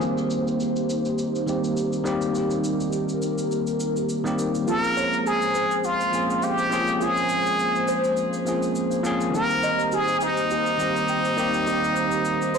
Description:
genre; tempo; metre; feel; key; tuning
sunset chillout; 103 BPM; 4/4; swing 55% on 16ths; unclear; A4 = 439 Hz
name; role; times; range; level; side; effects
bell-like tine electric piano; accompaniment; 0.0-12.6 s; Eb3 to Ab4; -26 LUFS; moving between left 3 dB and right 4 dB; auto-pan, digital delay
airy breathy pad; sustained chords; 0.0-12.6 s; Ab3 to C5; -28 LUFS; left 1 dB; chorus
cabasa; drums; 0.0-12.6 s; none; -39 LUFS; equal; low-pass filter on perc, low-pass filter on room
trumpet with plunger mute; melody; 4.7-12.6 s; Eb4 to Bb4; -23 LUFS; equal; tape echo
soft round pluck; arpeggios; 4.7-12.6 s; Eb4 to G5; -30 LUFS; right 2 dB; analog chorus, digital delay
room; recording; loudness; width
moderate digital room reverb, RT60 1.1 s, small room ambience; blown-out, overdriven recording, overdrive; -21 LUFS; side -6 dB against mid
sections
0.0-12.6 A section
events
filter sweep on analog synth pad 0.0-12.6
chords
0.0 Cm7; 4.7 Bbm9; 9.3 Cm7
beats
| 0.02 0.60 1.19 1.77 | 2.35 2.93 3.52 4.10 | 4.68 5.26 5.84 6.43 | 7.01 7.59 8.18 8.76 | 9.34 9.92 10.51 11.09 | 11.67 12.25

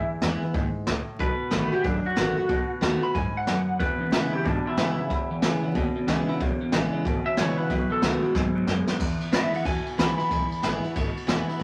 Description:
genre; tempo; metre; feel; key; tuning
rockabilly; 184 BPM; 4/4; swing 63% on 8ths; E major; A4 = 440 Hz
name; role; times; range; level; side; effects
electric guitar through a small old amp; melody; 0.0-10.8 s; D4 to B5; -32 LUFS; equal; spring reverb
picked steel-string acoustic guitar; accompaniment; 0.0-11.6 s; E2 to F#4; -30 LUFS; equal; none
upright bass; bass; 0.0-11.6 s; E1 to A2; -36 LUFS; equal; none
jazz brush drum kit; drums; 0.2-11.6 s; crash cymbal, hi-hat, kick drum, ride cymbal, snare drum; -31 LUFS; equal; none
electric guitar through a small old amp; riff; 3.8-9.0 s; E2 to G#3; -32 LUFS; equal; phaser
room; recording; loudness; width
wet studio reverb, RT60 0.6 s; vinyl crackle; -25 LUFS; mono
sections
0.0-9.0 A section; 9.0-11.6 B section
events
drum fill 8.4-9.0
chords
0.0 E; 1.2 B7; 3.8 E; 7.7 B7; 9.0 E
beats
0.23 0.55 0.88 | 1.20 1.53 1.85 2.18 | 2.50 2.83 3.16 3.48 | 3.81 4.13 4.46 4.78 | 5.11 5.43 5.76 6.08 | 6.41 6.73 7.06 7.38 | 7.71 8.03 8.36 8.68 | 9.01 9.33 9.66 9.98 | 10.31 10.63 10.96 11.28 | 11.61

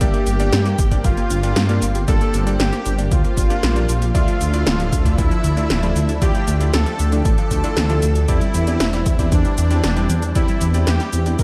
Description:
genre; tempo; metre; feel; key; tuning
synthwave; 116 BPM; 4/4; straight; G dorian; A4 = 440 Hz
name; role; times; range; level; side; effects
soft supersaw; melody; 0.0-11.4 s; D4 to Bb4; -28 LUFS; equal; tape echo, shimmer reverb
string machine, violins; second line; 0.0-11.4 s; D4 to Bb4; -34 LUFS; equal; none
lush unison pad; sustained chords; 0.0-11.4 s; D3 to E5; -34 LUFS; equal; chorus, phaser, sidechain pumping, shimmer reverb
analog pluck; arpeggios; 0.0-11.4 s; E3 to G4; -32 LUFS; equal; none
bright electric grand piano; stabs; 0.0-11.4 s; A3 to E5; -30 LUFS; equal; shimmer reverb
dark detuned saw bass; bass; 0.0-11.4 s; D1 to G2; -21 LUFS; equal; sidechain pumping
80s electronic pad drums; drums; 0.0-11.4 s; cabasa, hi-hat, snare drum; -27 LUFS; equal; none
electronic kick drum; drums; 0.0-11.4 s; none; -21 LUFS; equal; none
room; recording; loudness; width
light reverb, digital ambience; dark, warm production; -18 LUFS; mono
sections
0.0-11.4 A section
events
none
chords
0.0 Gm; 4.1 Dmadd9; 8.3 Cadd9/E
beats
| 0.01 0.53 1.04 1.56 | 2.08 2.60 3.11 3.63 | 4.15 4.67 5.18 5.70 | 6.22 6.73 7.25 7.77 | 8.29 8.80 9.32 9.84 | 10.36 10.87 11.39

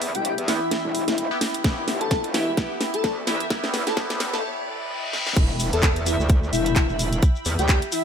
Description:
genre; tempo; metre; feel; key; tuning
bass house; 129 BPM; 4/4; swing 57% on 16ths; E minor; A4 = 440 Hz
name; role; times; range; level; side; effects
sweeping resonant pad; sustained chords; 0.0-8.0 s; E4 to B5; -32 LUFS; right 1 dB; chorus, sidechain pumping
metallic wobble bass; bass; 0.0-7.8 s; E1 to E2; -27 LUFS; equal; distortion, chorus, tube saturation, sidechain pumping, high-pass filter
garage drum kit; drums; 0.0-8.0 s; crash cymbal, handclaps, hi-hat, snare drum; -27 LUFS; equal; none
riser, reverse cymbal and impact; sound effects; 2.2-7.2 s; none; -34 LUFS; left 1 dB; none
warbly tape-like pad; texture; 0.0-4.4 s; E4 to G5; -44 LUFS; equal; none
airy dreamy lead; melody; 0.1-8.0 s; E4 to A4; -27 LUFS; left 2 dB; chorus, dub echo
band-passed chord stab; stabs; 0.5-4.4 s; B3 to G4; -31 LUFS; right 1 dB; phaser, sidechain pumping, dub echo
electronic kick drum; drums; 1.6-7.8 s; none; -20 LUFS; equal; none
shekere; percussion; 5.4-8.0 s; none; -33 LUFS; left 5 dB; none
room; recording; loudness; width
light reverb; high-pass filter; -20 LUFS; side -7 dB against mid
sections
0.0-5.4 A section; 5.4-8.0 B section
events
build-up 0.0-5.4; drum fill 0.0-4.4, 5.1; filter sweep 0.0-5.4; break 4.4-5.4; reverse cymbal 4.4-5.4; drop 5.4-8.0; impact 5.4-7.2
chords
0.0 Em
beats
0.25 0.71 1.18 | 1.64 2.11 2.58 3.04 | 3.50 3.97 4.43 4.90 | 5.37 5.83 6.30 6.76 | 7.23 7.69

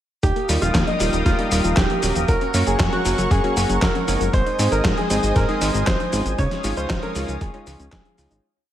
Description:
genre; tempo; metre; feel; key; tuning
italo disco; 117 BPM; 4/4; straight; unclear; A4 = 437 Hz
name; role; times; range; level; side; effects
bright concert grand piano; melody; 0.2-8.4 s; Eb4 to Db5; -25 LUFS; right 1 dB; tape echo
lush unison pad; sustained chords; 0.2-8.4 s; Bb4 to Eb6; -27 LUFS; equal; chorus, phaser, vintage 12-bit sampler grit
analog pluck; arpeggios; 0.2-8.4 s; F3 to Ab4; -30 LUFS; left 2 dB; chorus, cassette tape, tape echo
fat analog bass; bass; 0.2-8.4 s; Eb1 to Ab2; -23 LUFS; equal; none
dusty soul sampler-style drum kit; drums; 0.2-8.4 s; cabasa, handclaps, hi-hat, snare drum; -25 LUFS; equal; overdrive, gated reverb
electronic kick drum; drums; 0.2-8.0 s; none; -22 LUFS; equal; overdrive
warm electric grand piano; stabs; 0.5-8.4 s; Gb3 to Ab4; -28 LUFS; right 1 dB; vintage 12-bit sampler grit
room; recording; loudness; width
light reverb; none; -18 LUFS; side -11 dB against mid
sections
0.2-8.4 chorus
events
fade-out 5.7-8.4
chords
0.2 Ebadd9; 2.3 Gb; 4.3 Ab; 6.4 Dbadd9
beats
| 0.23 0.74 1.26 1.77 | 2.28 2.80 3.31 3.82 | 4.33 4.85 5.36 5.87 | 6.38 6.90 7.41 7.92

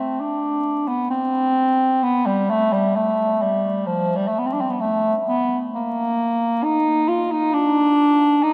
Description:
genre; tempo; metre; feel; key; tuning
classical, free, expressive piece for unaccompanied bass clarinet; 63-68 BPM; 4/4; rubato; unclear; A4 = 439 Hz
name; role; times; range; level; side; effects
clear bass clarinet; solo; 0.0-8.5 s; F3 to F4; -20 LUFS; equal; none
room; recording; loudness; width
wet cathedral reverb, RT60 4.5 s; vinyl crackle; -20 LUFS; mono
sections
0.0-8.5 A section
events
none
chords
none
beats
0.20 1.12 | 2.03 2.95 3.87 4.80 | 5.75 6.64 7.52 8.43

